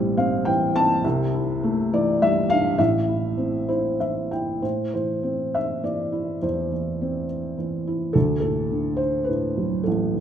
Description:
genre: classical, lyrical solo piano.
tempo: 103 BPM.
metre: 3/4.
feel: rubato.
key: A minor, A dorian from 4.6 s.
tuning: A4 = 442 Hz.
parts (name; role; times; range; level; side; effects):
felt-muted upright piano; solo; 0.0-10.2 s; A1 to A5; -21 LUFS; equal; none.
room: moderate concert hall reverb, RT60 2.3 s.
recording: minimal, uncompressed stereo recording.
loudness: -21 LUFS.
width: side -9 dB against mid.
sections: 0.0-4.6 A section; 4.6-10.2 B section.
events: felt piano fill 3.4-4.6.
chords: 0.0 Am7; 1.0 C69; 2.8 Am; 8.1 D.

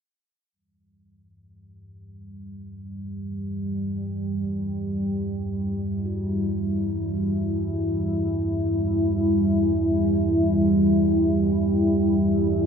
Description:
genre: dark ambient drone.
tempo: free time.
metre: none.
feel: none.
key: E minor.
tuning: A4 = 441 Hz.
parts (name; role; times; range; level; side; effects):
deep dark ambient pad; sustained chords; 2.2-12.7 s; G3 to E4; -22 LUFS; equal; chorus, built-in reverb.
deep rumbling drone; drone; 1.9-12.7 s; E2 to E3; -32 LUFS; equal; built-in reverb, wide subtle chorus.
bronze singing bowl; arpeggios; 4.4-12.7 s; G2 to F#4; -41 LUFS; left 1 dB; none.
room: wet cathedral reverb, RT60 4.8 s.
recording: none.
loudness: -21 LUFS.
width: side -7 dB against mid.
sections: 0.6-12.7 A section.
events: fade-in on synth drone 0.6-12.7.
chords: 0.6 Emadd9.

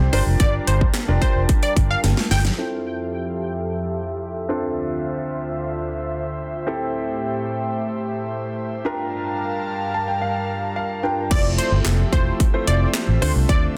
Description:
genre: dance-pop.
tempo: 110 BPM.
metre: 4/4.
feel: straight.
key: F major.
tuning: A4 = 441 Hz.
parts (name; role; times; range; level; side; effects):
warm concert grand piano; accompaniment; 0.0-13.8 s; A3 to A5; -29 LUFS; equal; sidechain pumping, low-pass filter.
airy breathy pad; sustained chords; 0.0-13.8 s; D2 to A5; -30 LUFS; equal; chorus, sidechain pumping, low-pass filter.
vintage muted fingered electric bass; bass; 0.0-2.5, 11.3-13.7 s; E1 to D2; -22 LUFS; equal; sidechain pumping.
plucky unison lead; melody; 0.1-2.4, 11.3-13.7 s; C5 to G5; -28 LUFS; equal; dub echo.
house drum kit; drums; 0.1-2.6, 11.3-13.6 s; crash cymbal, handclaps, hi-hat, kick drum, snare drum; -23 LUFS; equal; none.
room: light reverb.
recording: dense, heavily limited modern master.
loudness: -22 LUFS.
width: mono.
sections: 0.0-2.6 A section; 2.6-11.3 B section; 11.3-13.8 A section.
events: drop 0.0-2.6, 11.3-13.8; drum fill 2.0-2.6; filter sweep 2.6-11.3; grand piano fill 9.7-11.3.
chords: 0.1 Gm7; 2.6 Fmaj7; 4.5 Dm7; 6.7 Am7; 8.9 Gm7; 11.3 Fmaj7; 13.2 Dm7.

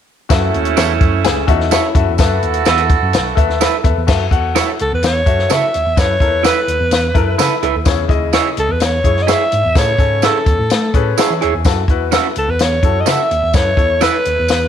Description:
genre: uptempo 1960s-style soul.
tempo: 127 BPM.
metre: 4/4.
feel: straight.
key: unclear.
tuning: A4 = 440 Hz.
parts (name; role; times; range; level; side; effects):
warm saxophone section; second line; 0.3-3.8 s; A3 to A4; -19 LUFS; right 11 dB; none.
clear baby grand piano; accompaniment; 0.3-14.4 s; C#3 to B5; -21 LUFS; left 11 dB; none.
tine electric piano; bass; 0.3-14.7 s; B1 to A3; -19 LUFS; right 1 dB; analog chorus.
compact cocktail drum kit; drums; 0.3-14.6 s; crash cymbal, hi-hat, kick drum, snare drum; -16 LUFS; left 2 dB; none.
tambourine; percussion; 0.3-14.6 s; none; -27 LUFS; right 14 dB; none.
electric guitar through a small old amp; stabs; 0.8-14.2 s; C#4 to E5; -19 LUFS; right 11 dB; phaser.
vintage hollow-body jazz guitar; riff; 1.2-2.2 s; C#4 to G#4; -20 LUFS; left 11 dB; none.
raspy alto saxophone; melody; 4.8-14.7 s; A4 to E5; -16 LUFS; equal; none.
room: light reverb, small room ambience.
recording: 1960s-style stereo with parts hard left and right.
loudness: -12 LUFS.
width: side -9 dB against mid.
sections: 0.3-4.1 A section; 4.1-14.7 B section.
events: grand piano fill 6.9-7.9, 10.9-11.7.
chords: 0.3 F#m7; 2.2 B7sus4; 4.1 F#m7; 6.0 B7sus4; 7.9 E6; 9.8 Amaj7; 11.7 F#m7.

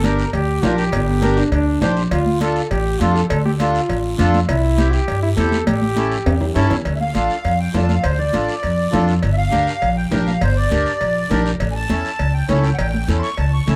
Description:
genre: latin, cumbia.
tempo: 202 BPM.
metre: 4/4.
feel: straight.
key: D minor, D harmonic minor from 6.9 s.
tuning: A4 = 441 Hz.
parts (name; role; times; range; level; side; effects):
bright trombone; second line; 0.0-6.5 s; D4 to Bb4; -24 LUFS; equal; none.
accordion; accompaniment; 0.0-13.8 s; C4 to C5; -26 LUFS; equal; none.
upright bass; bass; 0.0-13.8 s; G1 to G2; -21 LUFS; equal; none.
congas; percussion; 0.0-13.8 s; none; -26 LUFS; equal; none.
cowbell and timbales; percussion; 0.0-13.8 s; none; -30 LUFS; equal; none.
guiro; percussion; 0.0-13.8 s; none; -38 LUFS; equal; none.
accordion; melody; 7.0-13.8 s; C5 to C#6; -24 LUFS; equal; light tremolo tuning, slapback echo.
room: moderate spring reverb, RT60 1.6 s.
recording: heard from further back in the room.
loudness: -18 LUFS.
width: mono.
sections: 0.0-6.9 A section; 6.9-13.8 B section.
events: trombone solo 0.0-6.9; drum fill 5.7-6.9; accordion solo 6.9-13.8.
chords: 0.0 Gm; 2.1 Dm; 4.5 C; 5.7 A7; 6.9 Dm; 9.2 Gm; 11.6 A7.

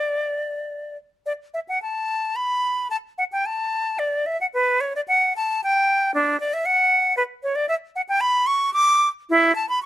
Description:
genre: classical, baroque-style fantasia for unaccompanied flute.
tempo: 112 BPM.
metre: 3/4.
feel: rubato.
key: D major.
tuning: A4 = 441 Hz.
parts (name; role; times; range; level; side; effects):
bright concert flute; solo; 0.0-9.9 s; D4 to D6; -19 LUFS; equal; none.
room: little or no reverb.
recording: close, detailed microphones, lossy compression artefacts.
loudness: -19 LUFS.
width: side -13 dB against mid.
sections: 0.0-1.3 A section; 1.3-9.9 B section.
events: none.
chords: none.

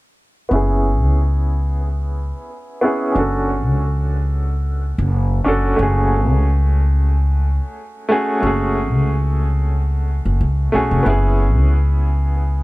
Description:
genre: trip hop.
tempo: 91 BPM.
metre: 4/4.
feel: swing 55% on 16ths.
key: F# minor.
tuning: A4 = 440 Hz.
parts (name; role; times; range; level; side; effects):
bright upright piano; accompaniment; 0.5-12.6 s; A3 to A4; -21 LUFS; equal; tremolo, low-pass filter, tape echo.
upright bass; bass; 0.5-12.6 s; F#1 to C#2; -16 LUFS; equal; none.
room: light reverb, small room ambience.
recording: none.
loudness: -15 LUFS.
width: side -20 dB against mid.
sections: 0.5-12.6 A section.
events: filter sweep on upright piano 0.5-12.6.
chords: 0.5 C#m7/F#; 3.1 Dmaj7/F#; 5.8 F#madd9; 11.1 C#m7/F#.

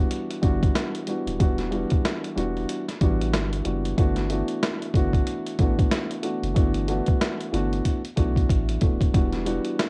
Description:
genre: hip hop, boom-bap hip-hop.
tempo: 93 BPM.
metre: 4/4.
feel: swing 59% on 16ths.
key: unclear.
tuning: A4 = 441 Hz.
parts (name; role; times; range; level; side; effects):
dark upright piano; accompaniment; 0.0-9.9 s; E3 to F#4; -29 LUFS; equal; cassette tape, high-pass filter, low-pass filter.
soft dub sub bass; bass; 0.0-9.6 s; D1 to B1; -30 LUFS; equal; none.
boom bap sampler-style drum kit; drums; 0.1-9.9 s; hi-hat, kick drum, snare drum; -26 LUFS; equal; cassette tape.
room: little or no reverb.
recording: home recording on cassette.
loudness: -24 LUFS.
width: mono.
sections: 0.0-9.9 A section.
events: drum fill 7.8-9.1.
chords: 0.0 Gmaj13.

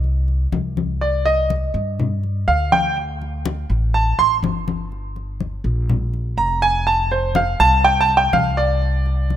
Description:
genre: latin, Cuban son and guajira.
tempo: 123 BPM.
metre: 4/4.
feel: straight.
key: G minor.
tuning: A4 = 442 Hz.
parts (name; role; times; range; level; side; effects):
upright bass; bass; 0.0-9.4 s; F1 to G2; -21 LUFS; equal; none.
congas; percussion; 0.0-9.4 s; none; -24 LUFS; left 5 dB; none.
bright grand piano; arpeggios; 1.0-9.4 s; C5 to C6; -17 LUFS; right 2 dB; none.
room: light reverb, small room ambience.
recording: rough home demo mix.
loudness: -16 LUFS.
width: side -11 dB against mid.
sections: 0.0-9.4 A section.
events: grand piano solo 0.0-9.4.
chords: 0.0 N.C.; 1.0 C5; 3.0 D5; 4.9 Gm7; 6.9 F5; 8.8 C5.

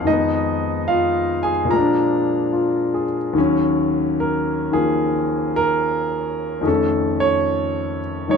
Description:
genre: solo jazz.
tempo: 73 BPM.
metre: 4/4.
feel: swing 67% on 8ths.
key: Eb minor from 3.4 s.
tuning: A4 = 440 Hz.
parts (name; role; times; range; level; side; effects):
clear concert grand piano; solo; 0.0-8.4 s; Eb2 to Bb5; -17 LUFS; left 1 dB; none.
room: moderate booth ambience, RT60 0.2 s.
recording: dark, warm production.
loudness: -17 LUFS.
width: side -6 dB against mid.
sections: 0.0-3.4 A section; 3.4-8.4 B section.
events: grand piano solo 3.4-8.4.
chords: 0.1 Fm7b5; 1.7 Bb7; 3.4 Ebm7; 6.6 F7b13.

